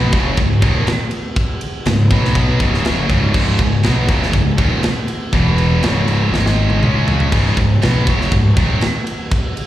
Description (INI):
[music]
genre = heavy metal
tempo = 121 BPM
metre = 4/4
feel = straight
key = C# minor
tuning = A4 = 440 Hz
[part]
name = scooped high-gain guitar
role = riff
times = 0.0-8.8 s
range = C#2 to C#4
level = -20 LUFS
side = right 6 dB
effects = distortion
[part]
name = tight distorted guitar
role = riff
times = 0.0-8.8 s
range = C#2 to C#4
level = -21 LUFS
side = left 6 dB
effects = distortion, slapback echo
[part]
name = fuzz picked electric bass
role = bass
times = 0.0-8.8 s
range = C#1 to C#2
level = -16 LUFS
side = equal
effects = overdrive
[part]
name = tight metal drum kit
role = drums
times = 0.1-9.7 s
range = crash cymbal, kick drum, ride cymbal, snare drum, toms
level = -18 LUFS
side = equal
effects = none
[sound]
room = studio ambience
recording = live gig heard through the venue's PA, recital hall reverb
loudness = -13 LUFS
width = side -13 dB against mid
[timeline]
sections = 0.0-9.7 A section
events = drum fill 6.3-7.3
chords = 0.0 C#5; 5.3 E5; 5.8 C#5; 6.3 G#5; 6.8 C#5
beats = 0.39 0.88 | 1.37 1.87 2.36 2.86 | 3.35 3.85 4.35 4.84 | 5.34 5.84 6.34 6.83 | 7.33 7.83 8.33 8.82 | 9.32